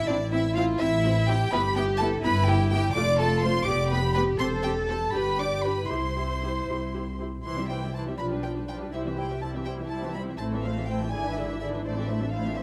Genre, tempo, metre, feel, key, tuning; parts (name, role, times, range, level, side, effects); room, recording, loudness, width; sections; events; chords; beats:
quick classical-period movement for string orchestra; 82 BPM (dotted quarters); 6/8; rubato; C major; A4 = 439 Hz
warm chamber violin section; melody; 0.0-12.6 s; D5 to D6; -33 LUFS; equal
warm chamber violin section; second line; 0.0-12.6 s; D4 to E5; -35 LUFS; equal
dark chamber cello section; bass; 0.0-12.6 s; C4 to A4; -34 LUFS; equal
warm studio viola section; accompaniment; 0.1-12.6 s; D3 to G4; -35 LUFS; equal
warm symphonic double bass section; bass; 0.1-12.6 s; E1 to C2; -31 LUFS; equal
moderate recital hall reverb, RT60 1.3 s; close, detailed microphones; -27 LUFS; mono
0.0-7.5 A section; 7.5-12.6 B section
0.1 Am; 1.5 Em/G; 3.0 F6; 3.7 G7/F; 4.4 C/E; 5.1 G5; 5.9 C; 8.2 G7/B; 8.9 C; 10.4 Am; 11.1 E7/G#; 11.9 Am
| 0.07 0.80 | 1.52 2.23 | 2.95 3.67 | 4.40 5.14 | 5.90 6.68 | 7.45 8.19 | 8.93 9.67 | 10.40 11.13 | 11.86 12.58